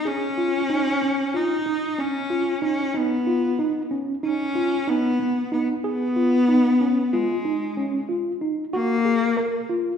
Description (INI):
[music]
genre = contemporary instrumental, chamber music in an uneven meter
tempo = 187 BPM (eighths)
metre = 9/8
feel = straight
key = G# dorian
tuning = A4 = 438 Hz
[part]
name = clear cello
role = melody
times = 0.0-9.7 s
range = G#3 to D#4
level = -23 LUFS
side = left 2 dB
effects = none
[part]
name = tine electric piano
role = arpeggios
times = 0.1-9.9 s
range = B3 to A#4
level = -24 LUFS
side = right 1 dB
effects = overdrive, medium stereo tremolo
[sound]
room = wet recital hall reverb, RT60 1.4 s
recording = heard from further back in the room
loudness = -20 LUFS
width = side -7 dB against mid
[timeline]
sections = 0.0-8.7 A section; 8.7-10.0 B section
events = none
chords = 0.1 C#; 2.9 Badd9; 5.8 G#m; 8.7 F#maj7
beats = | 0.06 0.38 0.70 1.02 1.34 1.66 1.99 2.31 2.63 | 2.95 3.27 3.59 3.91 4.23 4.55 4.88 5.20 5.52 | 5.84 6.16 6.48 6.80 7.12 7.45 7.77 8.09 8.41 | 8.73 9.05 9.37 9.69